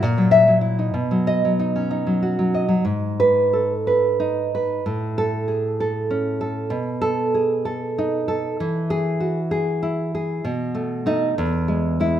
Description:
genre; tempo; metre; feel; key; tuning
romantic piece for solo classical guitar; 64 BPM (dotted quarters); 6/8; rubato; unclear; A4 = 440 Hz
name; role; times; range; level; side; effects
nylon-string guitar; solo; 0.0-12.2 s; E2 to E5; -19 LUFS; equal; none
room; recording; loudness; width
moderate recital hall reverb, RT60 1.4 s; minimal, uncompressed stereo recording; -19 LUFS; side -10 dB against mid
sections
0.0-2.8 A section; 2.8-12.2 B section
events
none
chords
0.0 F#7/A#; 0.9 B; 2.8 G#m; 4.8 A; 6.7 B7; 8.6 E; 10.4 B7; 11.3 E

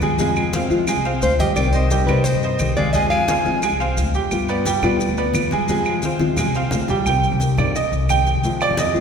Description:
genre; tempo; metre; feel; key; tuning
latin, Cuban son and guajira; 175 BPM; 4/4; straight; C harmonic minor; A4 = 438 Hz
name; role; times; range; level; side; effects
nylon-string guitar; accompaniment; 0.0-9.0 s; C3 to G4; -25 LUFS; left 4 dB; none
bright grand piano; arpeggios; 0.0-8.9 s; G3 to Ab5; -22 LUFS; right 4 dB; none
upright bass; bass; 0.0-9.0 s; B1 to G3; -22 LUFS; left 1 dB; none
congas; percussion; 0.0-9.0 s; none; -27 LUFS; left 2 dB; none
maracas; percussion; 0.0-9.0 s; none; -33 LUFS; left 3 dB; none
claves; percussion; 0.4-8.8 s; none; -29 LUFS; right 3 dB; none
nylon-string guitar; melody; 1.2-3.8 s; B4 to F5; -23 LUFS; equal; none
breathy bright jazz flute; second line; 1.2-3.8 s; D5 to Ab5; -27 LUFS; left 3 dB; none
room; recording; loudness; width
wet concert hall reverb, RT60 1.9 s; recorded in a church or concert hall; -16 LUFS; side -6 dB against mid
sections
0.0-7.1 A section; 7.1-9.0 B section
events
drum fill 6.0-7.1; grand piano solo 7.1-9.0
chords
0.2 Fm; 1.6 Cm; 2.9 Fm; 4.3 G7; 5.7 Fm; 7.1 Cm; 8.4 Fm

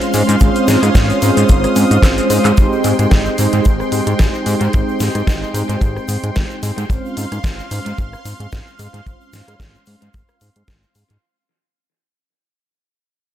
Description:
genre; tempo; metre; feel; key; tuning
nu-disco, nu disco; 111 BPM; 4/4; swing 55% on 16ths; unclear; A4 = 440 Hz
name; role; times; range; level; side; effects
mellow synth brass; accompaniment; 0.0-11.2 s; Ab3 to Eb5; -17 LUFS; right 1 dB; chorus, sidechain pumping, analog delay
lush unison pad; sustained chords; 0.0-11.2 s; Ab3 to Eb6; -25 LUFS; equal; chorus, sidechain pumping
pop drum kit; drums; 0.0-11.2 s; handclaps, hi-hat, rim click, shaker, snare drum; -24 LUFS; equal; overdrive, analog delay
egg shaker; percussion; 0.0-11.2 s; none; -33 LUFS; left 6 dB; none
fat analog bass; bass; 0.1-11.2 s; Ab1 to Ab2; -18 LUFS; equal; sidechain pumping
kick drum; drums; 0.4-10.8 s; none; -14 LUFS; equal; none
room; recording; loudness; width
light reverb, small room ambience; echo-heavy mix; -13 LUFS; side -11 dB against mid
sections
0.0-2.6 A section; 2.6-11.2 B section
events
drum fill 2.0-2.6; fade-out 2.6-11.2; filter sweep on analog synth bass 2.6-11.2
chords
0.0 Dbmaj7/Ab; 2.6 Abmaj7; 6.9 Dbmaj7/Ab

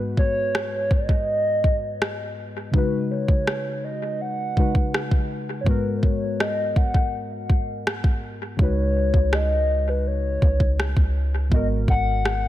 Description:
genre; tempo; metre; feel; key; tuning
contemporary R&B; 82 BPM; 4/4; straight; G# minor; A4 = 437 Hz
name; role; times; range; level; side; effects
muted felt-like synth keys; accompaniment; 0.0-12.5 s; G#2 to B4; -28 LUFS; left 1 dB; chorus
hollow clarinet-like synth lead; melody; 0.2-12.5 s; B4 to F#5; -26 LUFS; left 1 dB; chorus, analog delay
smooth R&B drum kit; drums; 0.2-12.4 s; kick drum, rim click; -22 LUFS; equal; none
clean 808-style bass; bass; 8.6-12.5 s; G#1 to C#2; -22 LUFS; equal; none
room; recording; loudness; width
light reverb; echo-heavy mix; -20 LUFS; side -14 dB against mid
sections
0.0-12.5 A section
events
none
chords
0.0 G#m7; 2.7 C#9sus4; 5.7 G#m9; 8.6 C#9sus4; 11.5 G#m9

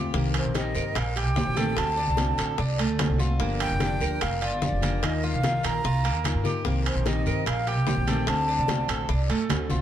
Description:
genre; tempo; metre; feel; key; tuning
latin, Cuban son and guajira; 148 BPM; 4/4; straight; unclear; A4 = 443 Hz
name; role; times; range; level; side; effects
nylon-string guitar; accompaniment; 0.0-9.8 s; C3 to Bb4; -32 LUFS; left 4 dB; none
Cuban tres; arpeggios; 0.0-9.8 s; A3 to Bb4; -31 LUFS; right 4 dB; none
upright bass; bass; 0.0-9.8 s; F1 to G2; -27 LUFS; equal; none
bongos; percussion; 0.1-9.8 s; none; -38 LUFS; left 7 dB; none
congas; percussion; 0.1-9.8 s; none; -34 LUFS; left 2 dB; none
guiro; percussion; 0.1-9.8 s; none; -40 LUFS; left 4 dB; none
timbales; percussion; 0.3-9.7 s; none; -33 LUFS; right 6 dB; none
silver concert flute; melody; 0.4-9.1 s; C5 to Bb5; -30 LUFS; right 1 dB; none
room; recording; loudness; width
moderate plate reverb, RT60 2.6 s; heard from further back in the room; -23 LUFS; side -10 dB against mid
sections
0.0-9.8 A section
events
drum fill 9.5-9.8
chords
0.1 Cm7; 1.8 D7; 3.4 Gm7; 5.0 Ebsus2; 6.7 Cm7; 8.3 D7

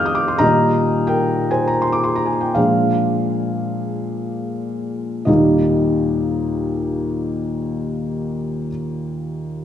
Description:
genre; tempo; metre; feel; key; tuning
classical, romantic nocturne for solo piano; 20-31 BPM (dotted quarters); 6/8; rubato; Eb major; A4 = 440 Hz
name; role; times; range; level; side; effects
felt-muted upright piano; solo; 0.0-9.6 s; Eb2 to G6; -17 LUFS; left 1 dB; none
room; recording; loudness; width
wet concert hall reverb, RT60 2.0 s; minimal, uncompressed stereo recording; -17 LUFS; side -10 dB against mid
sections
0.0-5.3 A section; 5.3-9.6 B section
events
slowing down 0.0-5.3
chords
0.4 Eb/Bb; 2.6 Bb7; 5.3 Eb

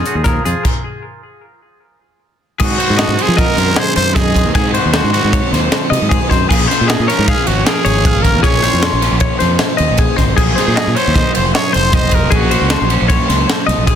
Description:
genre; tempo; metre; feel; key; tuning
math rock and midwest emo; 154 BPM; 5/4; straight; unclear; A4 = 439 Hz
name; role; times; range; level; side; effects
twangy electric guitar; accompaniment; 0.0-0.6 s; F3 to Ab4; -24 LUFS; right 9 dB; spring reverb
twelve-string electric guitar; arpeggios; 0.0-14.0 s; Ab4 to C6; -19 LUFS; left 7 dB; analog delay
growling fingered electric bass; bass; 0.0-13.9 s; F1 to F3; -17 LUFS; equal; overdrive
crisp fusion drum kit; drums; 0.1-14.0 s; crash cymbal, hi-hat, kick drum, ride cymbal, snare drum; -15 LUFS; equal; none
growling trumpet; melody; 2.6-12.9 s; Gb4 to Db5; -18 LUFS; right 2 dB; analog delay
crunchy overdriven guitar; riff; 2.6-14.0 s; Ab2 to Gb4; -20 LUFS; right 2 dB; none
room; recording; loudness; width
little or no reverb; dense, heavily limited modern master; -11 LUFS; side -9 dB against mid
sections
0.0-2.6 A section; 2.6-14.0 B section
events
stop 0.7-2.6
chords
0.0 Fm7; 0.7 N.C.; 2.6 Ab7; 6.5 Bbm9; 10.4 Gbmaj9#11

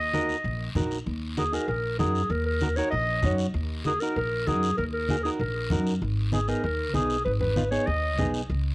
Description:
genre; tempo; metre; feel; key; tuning
latin, cumbia; 194 BPM; 4/4; straight; Eb minor; A4 = 440 Hz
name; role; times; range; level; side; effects
mellow clarinet; melody; 0.0-8.3 s; Ab4 to Eb5; -28 LUFS; equal; none
upright bass; bass; 0.0-8.7 s; Ab1 to Gb2; -28 LUFS; equal; none
mellow electric guitar; accompaniment; 0.1-8.4 s; Cb4 to Db5; -30 LUFS; right 2 dB; cassette tape
congas; percussion; 0.1-8.7 s; none; -30 LUFS; left 1 dB; none
guiro; percussion; 0.1-8.7 s; none; -41 LUFS; left 2 dB; none
room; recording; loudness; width
light reverb; home recording on cassette; -24 LUFS; side -24 dB against mid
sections
0.0-1.1 A section; 1.1-8.7 B section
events
none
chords
0.0 Ebm; 6.0 Abm

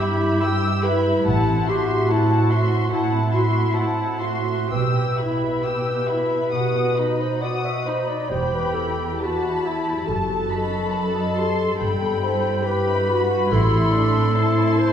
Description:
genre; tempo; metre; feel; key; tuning
classical, slow romantic movement for symphony orchestra; 68 BPM; 4/4; uneven beats, rubato; E minor; A4 = 439 Hz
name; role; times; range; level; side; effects
muted symphonic violin section; melody; 0.0-14.9 s; A5 to E6; -28 LUFS; left 2 dB; none
clear clarinet; second line; 0.0-14.9 s; E4 to E5; -25 LUFS; equal; none
muted symphonic violin section; second line; 0.0-14.9 s; D#5 to C6; -31 LUFS; left 2 dB; none
muted studio viola section; accompaniment; 0.0-14.9 s; D4 to A4; -25 LUFS; equal; none
concert harp; arpeggios; 0.0-14.9 s; E2 to E5; -28 LUFS; left 3 dB; none
muted symphonic cello section; bass; 0.0-14.9 s; E2 to B2; -25 LUFS; right 2 dB; none
muted symphonic double bass section; bass; 1.3-14.3 s; E1 to B1; -26 LUFS; right 2 dB; none
room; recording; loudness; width
wet recital hall reverb, RT60 1.4 s; heard from further back in the room; -19 LUFS; side -8 dB against mid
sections
0.0-14.9 A section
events
none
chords
0.0 Em/G; 1.3 F#m7b5/A; 4.7 Em/B; 6.5 B; 8.3 Em; 10.1 B7/F#; 11.8 Em/G; 13.5 Am

